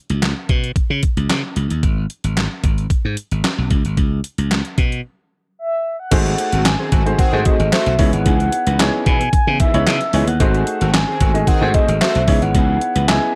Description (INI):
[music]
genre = early-eighties boogie funk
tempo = 112 BPM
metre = 4/4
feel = straight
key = C# minor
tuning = A4 = 442 Hz
[part]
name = glassy slap bass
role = bass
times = 0.1-13.2 s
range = G#1 to C#3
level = -21 LUFS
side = equal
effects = none
[part]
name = detuned 8-bit digital drum machine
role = drums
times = 0.1-13.2 s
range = crash cymbal, handclaps, hi-hat, kick drum, snare drum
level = -20 LUFS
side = equal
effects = gated reverb
[part]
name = mellow horn-like synth lead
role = melody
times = 5.6-13.3 s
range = D#5 to G#5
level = -24 LUFS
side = equal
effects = chorus
[part]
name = warm concert grand piano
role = accompaniment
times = 6.1-13.4 s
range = A3 to E5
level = -25 LUFS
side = equal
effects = none
[part]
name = electric guitar at the edge of break-up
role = riff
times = 6.1-13.3 s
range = E3 to B4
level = -30 LUFS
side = equal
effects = ensemble chorus
[part]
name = analog synth brass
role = second line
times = 6.5-12.2 s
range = D#3 to B#4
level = -27 LUFS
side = equal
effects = chorus
[sound]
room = little or no reverb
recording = none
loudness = -17 LUFS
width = mono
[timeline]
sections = 0.0-6.1 A section; 6.1-13.4 B section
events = break 5.0-6.1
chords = 0.0 N.C.; 3.7 C#5; 6.1 G#7b9; 8.0 C#m9; 10.4 G#7b9; 12.3 C#m9